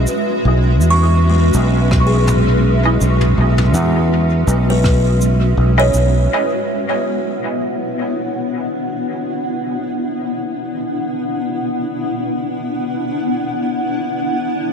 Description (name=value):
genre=ambient dub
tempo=82 BPM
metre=4/4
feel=swing 56% on 16ths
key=B dorian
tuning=A4 = 440 Hz
part: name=granular cloud pad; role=sustained chords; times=0.0-14.7 s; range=G#3 to F#5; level=-19 LUFS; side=equal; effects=built-in reverb
part: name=filtered dub chord stab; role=stabs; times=0.0-6.0 s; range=E4 to D#5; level=-24 LUFS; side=right 1 dB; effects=phaser, analog chorus, dub echo
part: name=fingered electric bass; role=bass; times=0.0-6.3 s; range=B1 to E2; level=-13 LUFS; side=equal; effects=tube saturation
part: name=vintage brush drum kit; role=drums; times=0.1-6.1 s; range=rim click, shaker, toms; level=-26 LUFS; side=right 1 dB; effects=dub echo
part: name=buzzing kalimba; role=arpeggios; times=0.9-9.0 s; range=G#3 to C#6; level=-22 LUFS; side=left 1 dB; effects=tape echo
part: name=electronic kick drum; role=drums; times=1.9-5.0 s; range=none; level=-17 LUFS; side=equal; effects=none
room=light reverb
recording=none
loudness=-14 LUFS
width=side -6 dB against mid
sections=0.0-6.3 A section; 6.3-14.7 B section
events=none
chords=0.0 C#m7/B; 6.3 Bm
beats=| 0.45 1.18 1.91 2.64 | 3.38 4.11 4.84 5.57 | 6.30 7.03 7.76 8.50 | 9.23 9.96 10.69 11.42 | 12.15 12.89 13.62 14.35